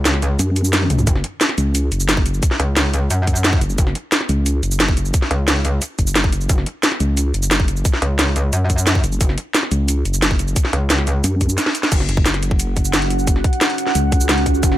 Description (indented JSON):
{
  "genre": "dark technical drum and bass",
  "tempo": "177 BPM",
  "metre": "4/4",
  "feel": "straight",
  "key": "unclear",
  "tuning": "A4 = 440 Hz",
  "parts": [
    { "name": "metallic wobble bass", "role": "bass", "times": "0.0-12.1, 14.6-14.8 s", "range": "F#1 to F#2", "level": "-18 LUFS", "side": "equal", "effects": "chorus, tube saturation, sidechain pumping" },
    { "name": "drum and bass drum kit", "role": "drums", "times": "0.1-14.8 s", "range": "crash cymbal, hi-hat, shaker, snare drum, toms", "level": "-19 LUFS", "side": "equal", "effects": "none" },
    { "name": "vowel-sweep wobble bass", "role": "bass", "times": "0.4-14.6 s", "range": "F#1 to F#2", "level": "-18 LUFS", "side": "equal", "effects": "chorus" },
    { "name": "electronic kick drum", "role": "drums", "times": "1.1-14.7 s", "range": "none", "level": "-18 LUFS", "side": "equal", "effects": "none" },
    { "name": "deep dark ambient pad", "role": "sustained chords", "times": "12.6-14.8 s", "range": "C#4 to F#5", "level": "-22 LUFS", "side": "right 2 dB", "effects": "chorus, built-in reverb, sidechain pumping" }
  ],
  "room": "little or no reverb",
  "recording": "none",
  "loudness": "-15 LUFS",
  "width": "side -14 dB against mid",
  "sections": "0.0-11.9 A section; 11.9-14.8 A section",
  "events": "drop 0.0-11.9, 11.9-14.8; kick drops out 0.4-1.1; drum fill 0.8, 11.6-11.9",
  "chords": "0.0 F#5"
}